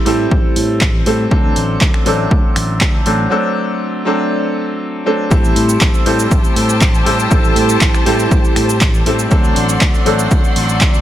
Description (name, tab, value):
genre	filtered disco house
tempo	120 BPM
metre	4/4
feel	straight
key	A dorian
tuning	A4 = 439 Hz
part	bright grand piano	accompaniment	0.0-11.0 s	F#3 to A4	-16 LUFS	equal	phaser, sidechain pumping, low-pass filter
part	fingered electric bass	bass	0.1-11.0 s	A1 to A2	-19 LUFS	equal	sidechain pumping, low-pass filter
part	punchy analog drum machine	drums	0.1-11.0 s	finger snaps, handclaps, hi-hat, shaker	-20 LUFS	right 1 dB	overdrive, sidechain pumping on hats, sidechain pumping on perc
part	electronic kick drum	drums	0.3-10.9 s	none	-13 LUFS	equal	overdrive
part	rich studio violin section	sustained chords	5.3-11.0 s	F#4 to C6	-21 LUFS	left 2 dB	sidechain pumping, low-pass filter
room	little or no reverb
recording	none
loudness	-11 LUFS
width	side -12 dB against mid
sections	0.0-5.3 A section; 5.3-11.0 B section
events	break 3.3-5.3; drop 5.3-11.0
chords	0.0 Am7; 1.3 D7; 5.3 Am7; 9.3 D7